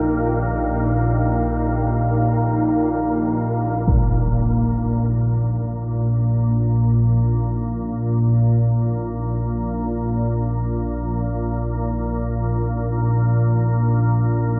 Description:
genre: dark ambient drone.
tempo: free time.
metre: none.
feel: none.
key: unclear.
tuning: A4 = 440 Hz.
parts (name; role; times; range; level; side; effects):
deep dark ambient pad; sustained chords; 0.0-14.6 s; Eb4 to G5; -29 LUFS; equal; chorus, built-in reverb.
organ-like drone; drone; 0.0-14.6 s; Bb1 to Bb2; -21 LUFS; equal; ensemble chorus, built-in reverb.
wind-like tuned noise texture; texture; 0.0-3.9 s; Bb4; -36 LUFS; equal; built-in reverb.
impact; percussion; 3.9-4.1 s; none; -25 LUFS; equal; low-pass filter on sfx.
room: wet huge ambient reverb, RT60 7.6 s.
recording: dark, warm production.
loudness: -20 LUFS.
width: mono.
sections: 0.0-3.9 A section; 3.9-14.6 B section.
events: none.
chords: 0.0 Ebadd9.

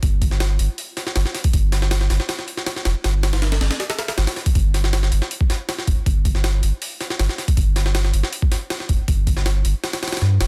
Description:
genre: drum and bass, jungle.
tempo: 159 BPM.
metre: 4/4.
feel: straight.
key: unclear.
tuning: A4 = 440 Hz.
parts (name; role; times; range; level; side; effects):
soft dub sub bass; bass; 0.0-10.5 s; F1 to G2; -21 LUFS; equal; none.
jungle sampler-style drum kit; drums; 0.0-10.5 s; hi-hat, kick drum, snare drum; -23 LUFS; equal; overdrive.
room: little or no reverb.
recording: dense, heavily limited modern master.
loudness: -20 LUFS.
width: mono.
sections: 0.0-4.6 A section; 4.6-10.5 A section.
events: drop 0.0-4.6, 4.6-10.5.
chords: none.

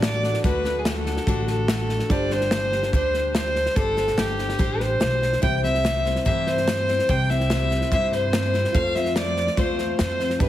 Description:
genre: honky-tonk and classic country.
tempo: 145 BPM.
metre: 4/4.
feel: straight.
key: unclear.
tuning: A4 = 440 Hz.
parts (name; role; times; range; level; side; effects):
dark fiddle; melody; 0.0-10.5 s; G4 to G5; -24 LUFS; equal; none.
dark upright piano; accompaniment; 0.0-10.5 s; D4 to C5; -34 LUFS; right 2 dB; none.
picked steel-string acoustic guitar; accompaniment; 0.0-10.5 s; C3 to C5; -28 LUFS; left 5 dB; none.
upright bass; bass; 0.0-10.5 s; G1 to G2; -26 LUFS; right 1 dB; none.
natural country drum kit; drums; 0.0-10.5 s; hi-hat, kick drum, snare drum; -26 LUFS; equal; none.
room: moderate recital hall reverb, RT60 1.6 s.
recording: heavily compressed radio sound, multiband compression.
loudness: -20 LUFS.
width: side -13 dB against mid.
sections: 0.0-10.5 A section.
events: none.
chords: 0.0 D; 2.1 Gsus4; 5.4 C; 8.7 F.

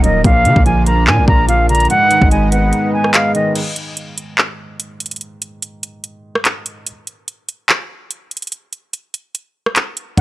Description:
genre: hip hop, drill.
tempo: 145 BPM.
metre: 4/4.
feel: half-time.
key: unclear.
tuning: A4 = 440 Hz.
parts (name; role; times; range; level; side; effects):
reedy concert flute; melody; 0.0-3.5, 10.2 s; Eb5 to Bb5; -15 LUFS; equal; low-pass filter.
dark baby grand piano; accompaniment; 0.0-3.6 s; Ab2 to Eb4; -20 LUFS; right 2 dB; low-pass filter.
warm analog pad; sustained chords; 0.0-3.5 s; F3 to Eb5; -24 LUFS; equal; chorus.
distorted 808-style bass; bass; 0.0-2.7, 10.2 s; Eb1 to D3; -15 LUFS; equal; distortion.
drill drum kit; drums; 0.0-10.2 s; crash cymbal, handclaps, hi-hat, kick drum, rim click; -16 LUFS; equal; overdrive.
room: little or no reverb.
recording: dry, gritty hardware recording, cassette tape.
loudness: -12 LUFS.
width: side -16 dB against mid.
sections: 0.0-3.6 A section; 3.6-10.2 B section.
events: break 2.7-3.6, 3.6-10.2.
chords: 0.2 Bb; 1.9 Abm; 3.6 N.C..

